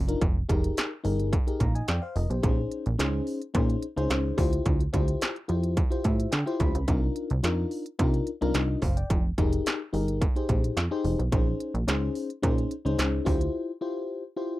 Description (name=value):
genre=early-eighties boogie funk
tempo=108 BPM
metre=4/4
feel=straight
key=unclear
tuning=A4 = 439 Hz
part: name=plucky analog bass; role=bass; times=0.0-13.5 s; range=F1 to D3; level=-27 LUFS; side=right 1 dB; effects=none
part: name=mellow FM electric piano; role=accompaniment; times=0.1-14.6 s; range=C4 to B5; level=-30 LUFS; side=left 3 dB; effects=chorus
part: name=industrial drum kit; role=drums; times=0.1-13.5 s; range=hi-hat, kick drum, snare drum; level=-27 LUFS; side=right 1 dB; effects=distortion
room=little or no reverb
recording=dry, close 1970s-style studio recording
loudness=-24 LUFS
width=side -16 dB against mid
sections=0.0-14.6 A section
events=FM electric piano fill 5.8-6.9; break 13.5-14.6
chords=0.2 Fm11; 2.4 Bbm11; 4.4 Dm11; 6.9 Cm11; 9.1 Fm11; 11.3 Bbm11; 13.3 Dm11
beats=| 0.21 0.77 1.32 1.88 | 2.44 2.99 3.55 4.10 | 4.66 5.21 5.77 6.32 | 6.88 7.44 7.99 8.55 | 9.10 9.66 10.21 10.77 | 11.32 11.88 12.44 12.99 | 13.55 14.10